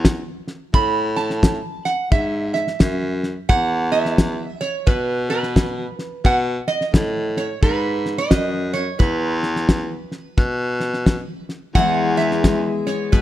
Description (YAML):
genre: honky-tonk and classic country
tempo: 87 BPM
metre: 4/4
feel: swing 62% on 8ths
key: E major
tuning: A4 = 438 Hz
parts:
  - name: bright baritone saxophone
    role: bass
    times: 0.0-13.2 s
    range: E2 to B2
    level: -23 LUFS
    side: left 1 dB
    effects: none
  - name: cloth-damped thuddy drum kit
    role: drums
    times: 0.0-13.2 s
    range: hi-hat, kick drum, snare drum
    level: -18 LUFS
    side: left 1 dB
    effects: none
  - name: lap resonator guitar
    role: second line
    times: 0.7-13.2 s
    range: B4 to B5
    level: -23 LUFS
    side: right 4 dB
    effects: none
  - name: picked steel-string acoustic guitar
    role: accompaniment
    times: 11.8-13.2 s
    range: B2 to G#4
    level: -21 LUFS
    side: left 6 dB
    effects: none
room: light reverb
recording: none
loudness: -17 LUFS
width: side -13 dB against mid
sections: 0.0-13.2 A section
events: resonator guitar played with a steel bar solo 0.0-13.2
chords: 0.0 A5; 3.5 E5; 6.2 B; 9.0 E